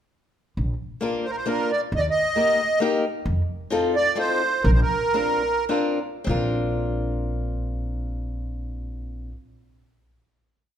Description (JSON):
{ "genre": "musette waltz", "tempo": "98-136 BPM", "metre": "3/4", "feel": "straight", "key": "Bb major", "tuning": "A4 = 441 Hz", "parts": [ { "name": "upright bass", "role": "bass", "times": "0.6-9.3 s", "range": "Bb1 to F2", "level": "-25 LUFS", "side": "equal", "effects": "none" }, { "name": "picked old ladder-braced acoustic guitar", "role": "accompaniment", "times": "1.0-9.4 s", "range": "Bb3 to Bb4", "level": "-26 LUFS", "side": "left 3 dB", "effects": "none" }, { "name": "accordion", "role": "melody", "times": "1.2-5.7 s", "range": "Bb4 to Eb5", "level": "-22 LUFS", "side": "right 2 dB", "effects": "light tremolo tuning" } ], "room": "moderate recital hall reverb, RT60 1.3 s", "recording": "minimal, uncompressed stereo recording", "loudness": "-21 LUFS", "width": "side -9 dB against mid", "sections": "0.6-6.3 A section; 6.3-9.9 final chord", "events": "slowing down 3.3-6.3", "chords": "0.6 Bb; 1.9 Eb; 3.3 F7; 4.6 Bbadd9" }